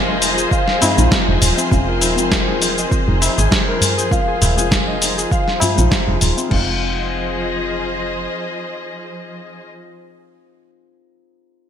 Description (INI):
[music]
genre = organic downtempo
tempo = 100 BPM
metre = 4/4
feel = swing 53% on 16ths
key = F minor pentatonic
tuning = A4 = 440 Hz
[part]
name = deep mellow chord stab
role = accompaniment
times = 0.0-11.4 s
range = Ab3 to F4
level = -26 LUFS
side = left 2 dB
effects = chorus, sidechain pumping, ping-pong delay
[part]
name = dark studio string section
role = sustained chords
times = 0.0-9.7 s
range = F3 to Eb5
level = -23 LUFS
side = left 1 dB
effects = sidechain pumping
[part]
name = Celtic harp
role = arpeggios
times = 0.0-9.4 s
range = C4 to F5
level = -22 LUFS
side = left 3 dB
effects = low-pass filter, ping-pong delay
[part]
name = woody FM bass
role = bass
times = 0.0-8.3 s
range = Eb1 to Bb1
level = -20 LUFS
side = right 1 dB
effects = none
[part]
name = dusty soul sampler-style drum kit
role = drums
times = 0.2-6.6 s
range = cabasa, crash cymbal, hi-hat, snare drum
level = -19 LUFS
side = left 1 dB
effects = gated reverb
[part]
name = tabla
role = percussion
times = 0.2-6.5 s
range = none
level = -25 LUFS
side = equal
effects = none
[part]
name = electronic kick drum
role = drums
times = 0.5-6.6 s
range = none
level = -20 LUFS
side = right 1 dB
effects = overdrive
[sound]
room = moderate plate reverb, RT60 2.1 s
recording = bright 1980s-style digital production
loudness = -14 LUFS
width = side -9 dB against mid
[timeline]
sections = 0.0-6.5 A section; 6.5-8.9 B section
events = filter sweep on synth stab 0.0-6.5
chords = 0.0 Fm7; 1.7 Bbm7; 6.5 Fm7